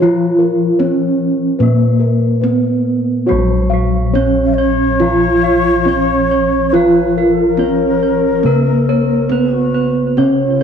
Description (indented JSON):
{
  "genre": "Javanese gamelan",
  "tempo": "70 BPM",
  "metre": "4/4",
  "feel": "straight",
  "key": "Bb pelog",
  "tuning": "A4 = 440 Hz",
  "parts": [
    { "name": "gamelan-type bronze metallophone", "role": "melody", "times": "0.0-10.6 s", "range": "Gb3-20c to F4-30c", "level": "-15 LUFS", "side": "right 3 dB", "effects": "none" },
    { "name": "gamelan-type bronze metallophone", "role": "accompaniment", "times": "0.0-10.6 s", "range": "Db3-30c to Bb3", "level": "-21 LUFS", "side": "left 10 dB", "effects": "none" },
    { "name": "gamelan-type bossed gongs", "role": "arpeggios", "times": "0.0-10.6 s", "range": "Bb4 to F5-30c", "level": "-22 LUFS", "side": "left 6 dB", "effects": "none" },
    { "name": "gamelan-type bossed gongs", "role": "bass", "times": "0.0-10.6 s", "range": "Bb1 to Gb4-20c", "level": "-17 LUFS", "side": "right 1 dB", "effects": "tube saturation" },
    { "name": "gamelan-type bronze metallophone", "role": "arpeggios", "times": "3.3-10.6 s", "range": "Gb4-20c to F5-30c", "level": "-21 LUFS", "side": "right 9 dB", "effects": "tape echo" },
    { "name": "mellow bansuri", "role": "second line", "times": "4.5-10.6 s", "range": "F4-33c to F5-30c", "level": "-18 LUFS", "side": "left 7 dB", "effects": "none" }
  ],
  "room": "moderate echo chamber reverb, RT60 2.1 s",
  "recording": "1960s-style stereo with parts hard left and right",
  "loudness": "-11 LUFS",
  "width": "side -7 dB against mid",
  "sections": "0.0-3.3 A section; 3.3-10.6 B section",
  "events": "none",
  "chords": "none",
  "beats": "| 0.02 0.81 1.61 2.44 | 3.29 4.15 5.01 5.87 | 6.73 7.59 8.45 9.31 | 10.18"
}